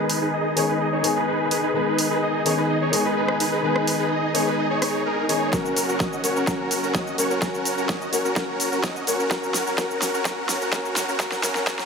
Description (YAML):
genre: EDM, festival progressive house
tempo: 127 BPM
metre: 4/4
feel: straight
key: G# minor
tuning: A4 = 441 Hz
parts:
  - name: dark baby grand piano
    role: accompaniment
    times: 0.0-11.9 s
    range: D#3 to A#4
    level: -26 LUFS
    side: left 4 dB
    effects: sidechain pumping, ping-pong delay
  - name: dense compressed supersaw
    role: riff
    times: 0.0-11.9 s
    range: C#4 to D#5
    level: -24 LUFS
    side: right 1 dB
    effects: sidechain pumping, low-pass filter, ping-pong delay
  - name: big-room dance drum kit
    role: drums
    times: 0.1-11.9 s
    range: hi-hat, rim click, shaker, snare drum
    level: -27 LUFS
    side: right 1 dB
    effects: overdrive, small room ambience
  - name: electronic kick drum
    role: drums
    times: 5.5-11.8 s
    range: none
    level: -26 LUFS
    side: equal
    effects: overdrive, small room ambience
  - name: riser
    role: sound effects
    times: 9.2-11.9 s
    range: none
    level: -44 LUFS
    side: right 2 dB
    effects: none
room: moderate huge ambient reverb, RT60 7.5 s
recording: high-pass filter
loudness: -20 LUFS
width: side -5 dB against mid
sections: 0.0-11.9 A section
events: build-up 0.0-11.9; filter sweep on supersaw synth 0.0-11.9; filter sweep 0.0-11.9; drum fill 5.5-11.9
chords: 0.0 G#m; 5.5 F#